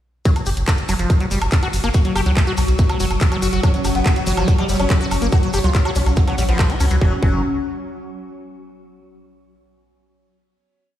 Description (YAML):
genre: psychedelic trance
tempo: 142 BPM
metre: 4/4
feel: straight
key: unclear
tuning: A4 = 442 Hz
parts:
  - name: swarming drone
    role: sustained chords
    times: 0.8-7.1 s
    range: F#3 to F#4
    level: -26 LUFS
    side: equal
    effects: built-in reverb, sidechain pumping
  - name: liquid acid bass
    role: riff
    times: 0.3-7.4 s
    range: E#3 to G4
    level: -25 LUFS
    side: left 1 dB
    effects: chorus, auto-pan, sidechain pumping, ping-pong delay
  - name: electronic kick drum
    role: drums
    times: 0.3-7.3 s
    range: none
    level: -16 LUFS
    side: equal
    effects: none
  - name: garage drum kit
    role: drums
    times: 0.3-7.0 s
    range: handclaps, hi-hat, woodblock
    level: -26 LUFS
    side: equal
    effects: none
  - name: maracas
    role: percussion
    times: 0.3-7.0 s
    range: none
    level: -34 LUFS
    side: left 4 dB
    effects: none
  - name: round analog bass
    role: bass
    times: 0.5-7.4 s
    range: F#1 to C#2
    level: -19 LUFS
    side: equal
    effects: none
  - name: sitar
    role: melody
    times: 3.6-7.4 s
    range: F#3 to F#4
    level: -25 LUFS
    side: left 1 dB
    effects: phaser, vintage 12-bit sampler grit, sidechain pumping, ping-pong delay
room: light reverb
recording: played on a big sound system in a bare room, stone room reverb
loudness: -15 LUFS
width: side -12 dB against mid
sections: 0.3-7.0 drop; 7.0-8.7 final chord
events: drop 0.3-7.0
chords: 0.3 F#5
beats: | 0.25 0.68 1.10 1.52 | 1.94 2.37 2.79 3.21 | 3.63 4.06 4.48 4.90 | 5.32 5.75 6.17 6.59 | 7.01